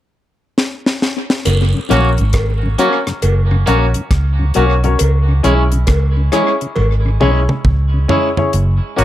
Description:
roots reggae; 68 BPM; 4/4; swing 64% on 16ths; F# mixolydian; A4 = 440 Hz
deep reggae drum kit; drums; 0.6-9.0 s; hi-hat, kick drum, rim click, snare drum, toms; -18 LUFS; equal; tape echo
vintage muted fingered electric bass; bass; 1.5-9.0 s; F#1 to C#2; -13 LUFS; equal
cowbell and jawbone-type rattle; percussion; 1.5-7.0 s; -24 LUFS; equal
mellow tonewheel organ; accompaniment; 1.7-8.4 s; F#2 to C#4; -22 LUFS; left 2 dB; slow rotary speaker
twangy electric guitar; accompaniment; 1.9-9.0 s; G#3 to F#4; -21 LUFS; right 3 dB; tape echo
clear upright piano; stabs; 1.9-9.0 s; C#4 to C#5; -18 LUFS; left 4 dB
light reverb; echo-heavy mix; -12 LUFS; side -13 dB against mid
0.0-1.5 A section; 1.5-8.5 B section
drum fill 0.6-1.5, 6.8-8.5
0.0 N.C.; 1.5 F#; 5.0 C#m; 8.5 F#

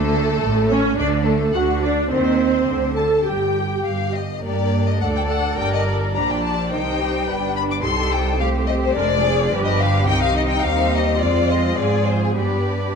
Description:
quick classical-period movement for string orchestra; 106 BPM; 2/4; rubato; G minor, C minor from 9.0 s; A4 = 439 Hz
rich chamber violin section; melody; 0.0-13.0 s; Ab4 to D6; -24 LUFS; left 8 dB
rich chamber violin section; second line; 0.0-13.0 s; D4 to A5; -27 LUFS; left 3 dB
rich chamber viola section; accompaniment; 0.0-12.9 s; Eb3 to A4; -22 LUFS; right 2 dB
clear chamber cello section; bass; 0.0-13.0 s; G2 to Bb4; -27 LUFS; right 3 dB
clear chamber double bass section; bass; 0.0-13.0 s; F1 to Ab2; -22 LUFS; right 2 dB
moderate scoring stage reverb, RT60 1.7 s; dark, warm production; -17 LUFS; side -6 dB against mid
0.0-4.4 A section; 4.4-13.0 A section
0.4 A; 1.0 D; 2.1 Cm/Eb; 2.7 D5; 3.3 Ebadd9/G; 4.4 Gm; 5.0 D; 5.6 Gm; 6.7 Cm; 7.3 G; 7.8 Cm; 9.0 Dm7b5/F; 9.5 G7; 10.1 Cm; 10.6 Cm/Eb; 11.2 Fm; 12.4 G

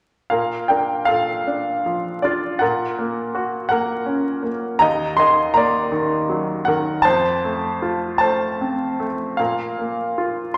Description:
classical, lyrical solo piano; 52 BPM (dotted quarters); 6/8; rubato; Bb major; A4 = 440 Hz
bright baby grand piano; solo; 0.3-10.6 s; Eb2 to C6; -20 LUFS; equal
wet concert hall reverb, RT60 1.9 s; vinyl crackle; -21 LUFS; mono
0.3-10.6 A section
0.3 Bb; 2.6 Gb/Bb; 4.8 Ebm; 7.1 F; 9.4 Bb5

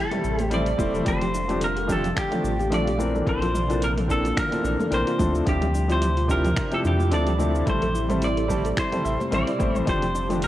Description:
sunset chillout; 109 BPM; 4/4; swing 56% on 16ths; A4 = 440 Hz
clean electric guitar; melody; 0.0-10.5 s; G4 to D5; -27 LUFS; right 1 dB; tape echo
soft string machine; sustained chords; 0.0-10.5 s; C3 to F4; -31 LUFS; equal; phaser, ensemble chorus
soft round pluck; arpeggios; 0.0-10.5 s; D4 to E5; -32 LUFS; left 2 dB; wide subtle chorus, ping-pong delay
warm concert grand piano; accompaniment; 0.1-10.4 s; E3 to C5; -28 LUFS; left 2 dB; auto-pan
deep house drum kit; drums; 0.1-10.5 s; cabasa, finger snaps, hi-hat, toms; -31 LUFS; equal; overdrive, studio reverb
congas; percussion; 0.1-10.1 s; -34 LUFS; right 1 dB
warm sub bass; bass; 0.2-10.5 s; E1 to F2; -26 LUFS; equal
electronic kick drum; drums; 0.8-10.0 s; -28 LUFS; equal; studio reverb
moderate lush hall reverb, RT60 2.0 s; worn, warbling old tape, cassette tape, warbly pitch drift; -21 LUFS; side -13 dB against mid
0.0-10.5 A section
0.0 Am7; 1.1 F69; 3.0 Bbmaj9#11; 5.2 Dm11; 7.7 Am7; 9.9 F69

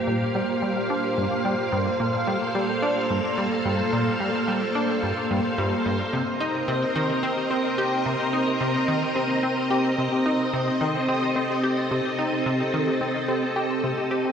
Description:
ambient, sequencer-driven space music; 109 BPM; 4/4; straight; A4 = 440 Hz
string machine, full ensemble; sustained chords; 0.0-14.3 s; Bb3 to F5; -24 LUFS; equal; ensemble chorus, shimmer reverb
bubbling stepped-filter texture; texture; 0.0-14.3 s; C5; -31 LUFS; right 1 dB; chorus, built-in reverb, shimmer reverb
thumb-piano-like synth pluck; arpeggios; 0.1-14.3 s; F4 to G5; -37 LUFS; left 3 dB
plucky analog bass; riff; 0.1-14.3 s; G2 to G4; -26 LUFS; equal; analog chorus, ping-pong delay, shimmer reverb
wet scoring stage reverb, RT60 2.0 s; worn, warbling old tape, cassette tape, warbly pitch drift; -22 LUFS; side -7 dB against mid
0.0-14.3 A section
0.0 Gm7; 6.1 Cm7

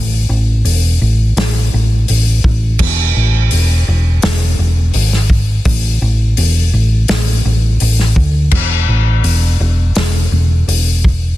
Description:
rock, shoegaze and dream pop; 84 BPM; 4/4; straight; A4 = 440 Hz
hollow-body short-scale fingered electric bass; bass; 0.0-11.3 s; E1 to D2; -12 LUFS; equal
loose indie drum kit; drums; 0.7-11.2 s; crash cymbal, hi-hat, kick drum, snare drum; -16 LUFS; left 1 dB
little or no reverb; dense, heavily limited modern master, lossy compression artefacts; -10 LUFS; side -15 dB against mid
0.0-11.4 A section

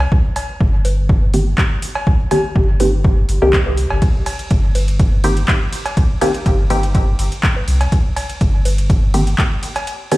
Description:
dub techno; 123 BPM; 4/4; swing 53% on 16ths; C minor; A4 = 439 Hz
warm sub bass; bass; 0.0-9.3 s; G1 to C2; -16 LUFS; equal; tube saturation, sidechain pumping
cowbell and bongos; percussion; 0.0-10.2 s; -26 LUFS; right 1 dB; sidechain pumping on perc, dub echo
electronic kick drum; drums; 0.1-9.5 s; -16 LUFS; equal
deep house drum kit; drums; 0.4-10.2 s; handclaps, hi-hat, ride cymbal; -25 LUFS; equal; overdrive, dub echo
filtered dub chord stab; stabs; 1.3-10.2 s; Eb3 to G4; -19 LUFS; equal; chorus, phaser, sidechain pumping, dub echo
little or no reverb; played on a big sound system in a bare room, stone room reverb, vinyl crackle; -13 LUFS; side -18 dB against mid
0.0-10.2 A section
filter sweep on synth stab 0.0-10.2
0.0 C5

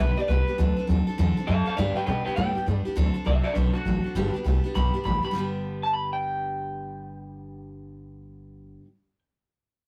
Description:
rockabilly; 202 BPM; 4/4; swing 63% on 8ths; G major; A4 = 438 Hz
electric guitar through a small old amp; melody; 0.0-9.2 s; D4 to B5; -31 LUFS; equal
picked steel-string acoustic guitar; accompaniment; 0.0-8.9 s; G2 to A4; -32 LUFS; equal
upright bass; bass; 0.0-8.8 s; G1 to B2; -27 LUFS; equal
moderate studio reverb, RT60 0.6 s; rough rehearsal-room recording, warm saturation; -25 LUFS; mono
0.0-3.0 A section; 3.0-5.4 B section; 5.4-7.7 C section
0.0 G; 0.6 D7; 1.8 G; 3.0 D7; 4.2 G

